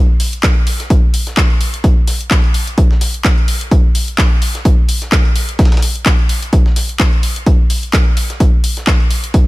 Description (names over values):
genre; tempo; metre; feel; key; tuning
house; 128 BPM; 4/4; swing 56% on 16ths; none; none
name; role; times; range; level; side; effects
dusty soul sampler-style drum kit; drums; 0.2-9.5 s; hi-hat, snare drum; -29 LUFS; right 1 dB; sidechain pumping on hats, high-pass filter on hats, studio ambience, high-pass filter on snare
house drum kit; drums; 0.2-9.4 s; handclaps, hi-hat; -19 LUFS; left 1 dB; studio ambience
electronic kick drum; drums; 0.4-9.4 s; none; -11 LUFS; equal; studio ambience
room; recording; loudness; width
little or no reverb; none; -11 LUFS; side -19 dB against mid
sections
0.0-9.5 A section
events
none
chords
none